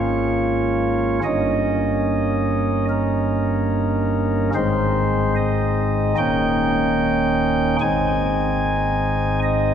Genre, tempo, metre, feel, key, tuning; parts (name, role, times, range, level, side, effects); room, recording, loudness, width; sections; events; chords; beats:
classical, chorale-style piece for pipe organ; 73 BPM; 4/4; rubato; Ab major; A4 = 438 Hz
pipe organ, flutes; solo; 0.0-9.7 s; Eb1 to Ab5; -18 LUFS; equal
wet church reverb, RT60 4.0 s; -18 LUFS; side -8 dB against mid
0.0-9.7 A section
0.0 Bbm7/Ab; 1.2 Eb7/G; 4.5 Ab; 6.2 Eb7; 7.8 Ab
0.41 | 1.24 2.06 2.89 3.71 | 4.54 5.36 6.18 6.99 | 7.80 8.62 9.43